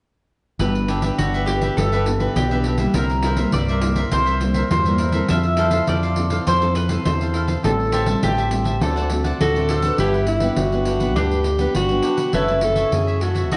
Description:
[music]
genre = samba and choro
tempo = 102 BPM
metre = 4/4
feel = straight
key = G major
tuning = A4 = 440 Hz
[part]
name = mandolin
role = second line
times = 0.6-13.6 s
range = D4 to E5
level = -26 LUFS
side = equal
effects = none
[part]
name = cavaquinho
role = accompaniment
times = 0.6-13.6 s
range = D4 to A5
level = -30 LUFS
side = equal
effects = none
[part]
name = nylon-string guitar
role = accompaniment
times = 0.6-13.6 s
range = F#2 to B4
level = -29 LUFS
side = equal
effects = none
[part]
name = fingered electric bass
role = bass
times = 0.6-13.6 s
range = F#1 to F#2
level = -24 LUFS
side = equal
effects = none
[part]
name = pandeiro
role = percussion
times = 0.6-13.6 s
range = none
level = -28 LUFS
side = equal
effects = none
[part]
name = warm alto saxophone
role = melody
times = 9.4-13.6 s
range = D#4 to B4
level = -24 LUFS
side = equal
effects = none
[sound]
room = moderate large studio reverb, RT60 1.4 s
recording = worn, warbling old tape, cassette tape, warbly pitch drift, nothing above 10.9 kHz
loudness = -20 LUFS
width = mono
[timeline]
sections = 0.6-10.0 A section; 10.0-13.6 B section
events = none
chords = 0.6 G6; 2.9 C7; 5.3 Fmaj7; 7.6 Am7; 8.8 D7; 10.0 Gmaj7; 12.3 F#m7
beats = | 0.60 1.19 1.77 2.36 | 2.95 3.54 4.12 4.71 | 5.30 5.88 6.47 7.06 | 7.64 8.23 8.81 9.40 | 9.99 10.57 11.16 11.75 | 12.34 12.92 13.51

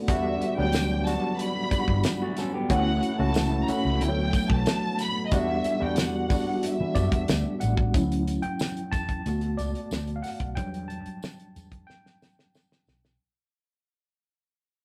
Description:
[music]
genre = lush 1970s-style soul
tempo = 92 BPM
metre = 4/4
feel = straight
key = E dorian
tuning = A4 = 440 Hz
[part]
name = tine electric piano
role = accompaniment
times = 0.0-13.2 s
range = F#3 to A5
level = -31 LUFS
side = equal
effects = overdrive
[part]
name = mellow French horn section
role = sustained chords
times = 0.0-7.9 s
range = D3 to F#4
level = -38 LUFS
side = equal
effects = none
[part]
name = warm studio violin section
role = melody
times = 0.1-7.6 s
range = D#5 to B5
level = -34 LUFS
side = equal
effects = none
[part]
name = vintage muted fingered electric bass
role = bass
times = 0.1-13.2 s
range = G1 to E3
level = -31 LUFS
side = equal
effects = none
[part]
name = damped 70s drum kit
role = drums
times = 0.1-13.2 s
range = hi-hat, kick drum, snare drum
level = -30 LUFS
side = equal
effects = none
[part]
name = tambourine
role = percussion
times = 0.1-13.0 s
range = none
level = -48 LUFS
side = equal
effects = none
[part]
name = electric guitar through a small old amp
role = riff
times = 2.2-2.9 s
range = A3 to A4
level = -34 LUFS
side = equal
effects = none
[sound]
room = moderate small room reverb, RT60 0.5 s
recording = rough rehearsal-room recording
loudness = -26 LUFS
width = mono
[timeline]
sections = 0.0-7.9 A section; 7.9-13.2 B section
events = fade-out 7.9-13.2; tine electric piano solo 7.9-13.2; drum fill 11.9-13.2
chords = 0.1 Em9; 2.7 Dmaj9; 4.0 Gmaj13/B; 5.3 Em9; 7.9 Dmaj9; 9.3 Bm7; 10.6 Em9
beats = | 0.09 0.74 1.39 2.05 | 2.70 3.36 4.01 4.66 | 5.32 5.97 6.63 7.28 | 7.94 8.60 9.25 9.91 | 10.57 11.22 11.88 12.54

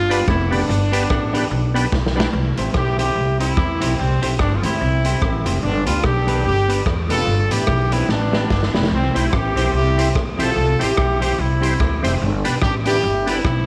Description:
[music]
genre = ska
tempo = 146 BPM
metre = 4/4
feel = swing 58% on 8ths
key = C major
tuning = A4 = 440 Hz
[part]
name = clear horn section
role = melody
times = 0.0-13.7 s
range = G3 to A4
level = -24 LUFS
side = equal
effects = none
[part]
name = upright bass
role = bass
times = 0.0-13.7 s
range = F1 to E2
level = -23 LUFS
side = equal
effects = none
[part]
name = semi-hollow electric guitar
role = accompaniment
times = 0.1-13.5 s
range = B3 to C5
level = -29 LUFS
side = equal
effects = slapback echo
[part]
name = overdriven tonewheel organ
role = stabs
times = 0.1-2.3, 9.1-13.4 s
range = B3 to C5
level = -30 LUFS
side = equal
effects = chorus vibrato, slow rotary speaker
[part]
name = raw garage drum kit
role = drums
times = 0.1-13.6 s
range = hi-hat, kick drum, rim click, snare drum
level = -25 LUFS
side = equal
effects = none
[sound]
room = light reverb, studio reverb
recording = none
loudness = -19 LUFS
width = mono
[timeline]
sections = 0.0-2.3 A section; 2.3-13.7 B section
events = drum fill 1.9-2.3, 8.1-8.9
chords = 0.0 F; 2.3 C; 12.2 G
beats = 0.28 | 0.69 1.10 1.51 1.92 | 2.33 2.75 3.16 3.57 | 3.98 4.39 4.80 5.21 | 5.63 6.04 6.45 6.86 | 7.27 7.68 8.10 8.51 | 8.92 9.33 9.74 10.15 | 10.57 10.98 11.39 11.80 | 12.21 12.63 13.04 13.45

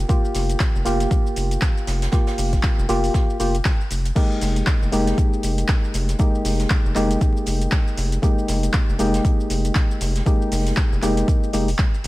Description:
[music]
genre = deep house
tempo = 118 BPM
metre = 4/4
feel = swing 58% on 16ths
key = F minor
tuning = A4 = 440 Hz
[part]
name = percussive organ stab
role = stabs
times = 0.0-11.7 s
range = Ab3 to G4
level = -24 LUFS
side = equal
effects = chorus, sidechain pumping, tape echo
[part]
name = rubbery square bass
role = bass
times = 0.0-12.1 s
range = F1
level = -22 LUFS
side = equal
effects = sidechain pumping
[part]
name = deep house drum kit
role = drums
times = 0.1-12.1 s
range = crash cymbal, handclaps, hi-hat, shaker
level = -28 LUFS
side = equal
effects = none
[part]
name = electronic kick drum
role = drums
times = 0.1-11.9 s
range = none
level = -19 LUFS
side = equal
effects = none
[part]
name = jazz brush drum kit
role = drums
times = 0.1-12.1 s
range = hi-hat, snare drum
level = -38 LUFS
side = right 3 dB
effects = none
[sound]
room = little or no reverb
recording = vinyl crackle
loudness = -18 LUFS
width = side -18 dB against mid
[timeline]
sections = 0.0-4.2 A section; 4.2-12.1 B section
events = drop 4.2-12.1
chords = 0.0 Gm7/F; 4.2 Fm11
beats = | 0.09 0.60 1.11 1.62 | 2.13 2.63 3.14 3.65 | 4.16 4.67 5.18 5.69 | 6.20 6.70 7.21 7.72 | 8.23 8.74 9.25 9.75 | 10.26 10.77 11.28 11.79

